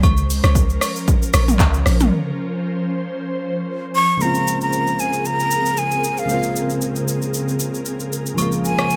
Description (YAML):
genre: amapiano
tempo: 115 BPM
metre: 4/4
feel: swing 55% on 16ths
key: unclear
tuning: A4 = 439 Hz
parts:
  - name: ethereal airy pad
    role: sustained chords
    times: 0.0-9.0 s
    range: Db3 to C5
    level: -27 LUFS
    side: equal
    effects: ensemble chorus, built-in reverb, sidechain pumping
  - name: deep log drum bass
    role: bass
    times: 0.0-2.1 s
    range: Bb1 to Db2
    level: -19 LUFS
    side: equal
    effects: none
  - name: deep house drum kit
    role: drums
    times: 0.0-9.0 s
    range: handclaps, hi-hat, kick drum, rim click, shaker, toms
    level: -23 LUFS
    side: equal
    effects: none
  - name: agogo bells and woodblock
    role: percussion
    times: 0.0-1.7, 8.4-8.9 s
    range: none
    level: -29 LUFS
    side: equal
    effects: none
  - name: breathy jazz flute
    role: melody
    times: 4.0-9.0 s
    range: F5 to Db6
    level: -21 LUFS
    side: equal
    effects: none
  - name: soft electric-piano-like synth keys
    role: accompaniment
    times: 4.2-9.0 s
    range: Db3 to F4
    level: -26 LUFS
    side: equal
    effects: chorus, tremolo
room: light reverb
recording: none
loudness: -19 LUFS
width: mono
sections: 0.0-4.2 A section; 4.2-9.0 B section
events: drop 0.0-4.2; break 2.1-4.2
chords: 0.0 Db6